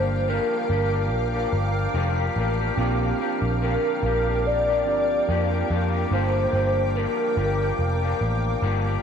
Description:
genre	indie pop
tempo	72 BPM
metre	4/4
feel	swing 55% on 16ths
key	G minor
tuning	A4 = 440 Hz
part	hollow clarinet-like synth lead	melody	0.0-8.6 s	Bb4 to D5	-25 LUFS	equal	ensemble chorus, slapback echo
part	barky tine electric piano	accompaniment	0.0-9.0 s	Bb3 to A5	-32 LUFS	right 12 dB	overdrive
part	electric guitar through a small old amp	accompaniment	0.0-9.0 s	G2 to G4	-29 LUFS	left 12 dB	wide subtle chorus, warbly pitch drift
part	shimmering ambient pad	sustained chords	0.0-9.0 s	Bb4 to D6	-29 LUFS	right 1 dB	chorus, built-in reverb
part	vintage muted picked electric bass	bass	0.0-9.0 s	F1 to F2	-25 LUFS	equal	none
room	light reverb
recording	1960s-style stereo with parts hard left and right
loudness	-21 LUFS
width	side -7 dB against mid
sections	0.0-9.0 A section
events	none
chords	0.0 Gm7; 2.8 Bb6; 6.1 Gm7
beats	0.29 1.12 1.95 | 2.78 3.62 4.45 5.29 | 6.12 6.96 7.79 8.62

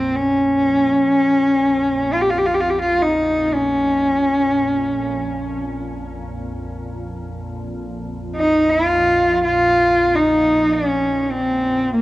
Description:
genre	world meditative, free-time meditation music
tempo	free time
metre	none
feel	none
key	Bb minor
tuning	A4 = 440 Hz
part	warm cello	melody	0.0-12.0 s	Bb3 to G4	-16 LUFS	equal	cassette tape, plate reverb, analog delay
part	soft additive organ-like pad	drone	0.0-12.0 s	Bb1 to F2	-28 LUFS	equal	ensemble chorus, built-in reverb, cassette tape
room	wet small room reverb, RT60 0.5 s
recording	home recording on cassette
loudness	-15 LUFS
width	side -17 dB against mid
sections	0.0-12.0 A section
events	none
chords	none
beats	free time

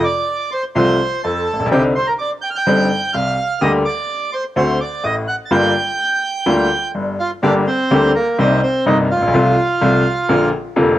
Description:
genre	tango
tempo	126 BPM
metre	4/4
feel	rubato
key	G minor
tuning	A4 = 440 Hz
part	bandoneon	melody	0.0-10.5 s	Bb3 to A6	-18 LUFS	right 2 dB	cassette tape, plate reverb
part	clear upright piano	accompaniment	0.8-11.0 s	F1 to G4	-15 LUFS	left 1 dB	cassette tape, plate reverb
room	wet booth ambience, RT60 0.2 s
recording	home recording on cassette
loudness	-14 LUFS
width	side -13 dB against mid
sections	0.0-7.4 A section; 7.4-11.0 B section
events	none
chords	0.0 F; 1.7 Cmadd9; 3.6 Gm/D; 4.6 D7; 5.5 Gm7; 7.4 Gm; 8.4 Cm7; 9.3 F/C; 10.3 Bb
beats	0.28 0.76 1.24 | 1.72 2.19 2.67 3.14 | 3.62 4.09 4.56 5.04 | 5.51 5.99 6.47 6.95 | 7.43 7.91 8.38 8.86 | 9.34 9.81 10.29 10.76

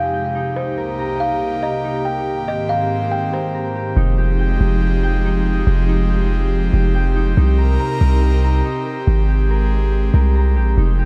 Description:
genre	hip hop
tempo	141 BPM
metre	4/4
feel	half-time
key	F minor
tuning	A4 = 440 Hz
part	kalimba	melody	0.0-3.5 s	C5 to G5	-25 LUFS	equal	low-pass filter, digital delay
part	airy breathy pad	sustained chords	0.0-11.1 s	C2 to Bb4	-24 LUFS	equal	chorus
part	concert harp	arpeggios	0.0-11.1 s	Eb4 to Bb5	-31 LUFS	equal	low-pass filter, digital delay
part	warm 808-style bass	bass	4.0-11.1 s	F1 to C2	-18 LUFS	equal	none
room	light reverb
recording	none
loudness	-18 LUFS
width	mono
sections	0.0-4.0 A section; 4.0-11.1 B section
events	none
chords	0.0 Fm9; 0.6 Cm7; 2.3 Abmaj9; 4.0 Fm9; 7.4 Cm7; 9.1 Abmaj9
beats	0.14 | 0.56 0.99 1.42 1.84 | 2.27 2.69 3.12 3.54 | 3.97 4.39 4.82 5.24 | 5.67 6.09 6.52 6.95 | 7.37 7.80 8.22 8.65 | 9.07 9.50 9.93 10.35 | 10.78

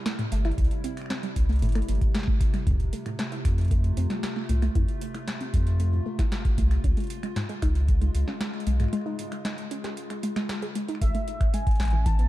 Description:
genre	IDM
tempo	115 BPM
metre	4/4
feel	straight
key	unclear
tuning	A4 = 442 Hz
part	warbly tape-like pad	sustained chords	0.0-12.3 s	A2 to F4	-36 LUFS	left 2 dB	chorus, built-in reverb, phaser, sidechain pumping
part	warbly dusty pluck	arpeggios	0.1-12.3 s	G#2 to G#4	-33 LUFS	right 1 dB	chorus, digital delay
part	booming analog drum machine	drums	0.1-12.3 s	finger snaps, hi-hat, snare drum	-36 LUFS	equal	overdrive, digital delay
part	warm sub bass	bass	0.3-12.3 s	G1 to F2	-23 LUFS	equal	none
part	electronic kick drum	drums	0.6-12.2 s	none	-25 LUFS	equal	overdrive
part	warm velvety synth lead	melody	11.0-12.3 s	E5 to A5	-33 LUFS	equal	chorus
room	little or no reverb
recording	dark, warm production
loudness	-24 LUFS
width	side -16 dB against mid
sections	0.0-11.0 A section; 11.0-12.3 B section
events	break 8.9-11.0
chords	0.0 C; 2.7 F; 6.8 C#; 11.0 Amaj7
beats	0.06 | 0.58 1.10 1.62 2.15 | 2.67 3.19 3.71 4.23 | 4.75 5.28 5.80 6.32 | 6.84 7.36 7.88 8.41 | 8.93 9.45 9.97 10.49 | 11.02 11.54 12.06

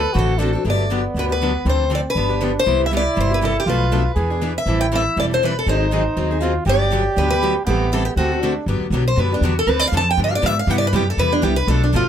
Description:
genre	acoustic string swing (jazz manouche)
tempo	239 BPM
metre	4/4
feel	swing 55% on 8ths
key	G major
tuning	A4 = 442 Hz
part	picked steel-string acoustic guitar	melody	0.0-12.1 s	D4 to A5	-21 LUFS	equal	none
part	breathy flugelhorn	second line	0.0-8.7 s	A3 to A4	-24 LUFS	right 3 dB	none
part	upright bass	bass	0.0-12.1 s	E1 to Ab2	-20 LUFS	equal	none
part	picked steel-string acoustic guitar	accompaniment	0.1-12.0 s	B2 to A4	-25 LUFS	left 5 dB	none
part	picked steel-string acoustic guitar	accompaniment	0.2-12.0 s	B2 to B4	-28 LUFS	right 5 dB	none
room	little or no reverb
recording	close, detailed microphones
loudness	-16 LUFS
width	side -9 dB against mid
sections	0.6-8.7 A section; 8.7-12.1 B section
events	steel-string acoustic guitar solo 8.7-12.1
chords	0.0 D7; 0.6 Gmaj7; 1.7 Dm7; 2.2 G7; 2.7 Cmaj7; 3.7 Bm7b5; 4.2 E7; 4.7 Am7; 5.7 Ab7; 6.7 Gmaj7; 7.7 Am7; 8.2 D7; 8.7 Gmaj7; 9.7 Dm7; 10.2 G7; 10.7 Cmaj7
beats	0.15 0.40 | 0.65 0.90 1.15 1.40 | 1.65 1.90 2.15 2.41 | 2.66 2.91 3.16 3.41 | 3.66 3.91 4.16 4.41 | 4.66 4.92 5.17 5.42 | 5.67 5.92 6.17 6.42 | 6.67 6.92 7.17 7.42 | 7.67 7.92 8.17 8.42 | 8.67 8.92 9.17 9.42 | 9.67 9.92 10.17 10.42 | 10.67 10.92 11.17 11.42 | 11.67 11.93

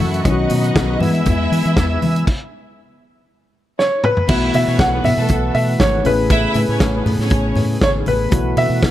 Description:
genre	disco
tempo	119 BPM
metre	4/4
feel	straight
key	unclear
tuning	A4 = 439 Hz
part	clear studio string section	second line	0.0-7.5 s	A3 to E5	-24 LUFS	right 1 dB	none
part	tine electric piano	accompaniment	0.0-8.9 s	D#3 to B4	-22 LUFS	left 4 dB	none
part	tonewheel organ	sustained chords	0.0-8.9 s	C#3 to E6	-25 LUFS	right 2 dB	chorus vibrato, lush chorus
part	fingered electric bass	bass	0.0-8.9 s	G#1 to E3	-20 LUFS	equal	none
part	warm soul drum kit	drums	0.0-8.9 s	crash cymbal, hi-hat, kick drum, snare drum, toms	-20 LUFS	equal	gated reverb
part	congas	percussion	0.0-8.9 s	none	-26 LUFS	left 3 dB	none
part	clear concert grand piano	melody	3.8-8.9 s	B4 to F#5	-19 LUFS	equal	tape echo
room	small room ambience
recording	none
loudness	-14 LUFS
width	side -13 dB against mid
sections	0.0-4.3 A section; 4.3-8.9 B section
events	stop 2.3-4.3; drum fill 3.8-4.3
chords	0.3 Badd9; 1.0 E; 2.3 N.C.; 4.3 B7sus4; 6.1 Amaj9; 8.3 B7sus4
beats	| 0.25 0.76 1.26 1.77 | 2.27 2.78 3.28 3.79 | 4.29 4.79 5.30 5.80 | 6.31 6.81 7.32 7.82 | 8.32 8.83

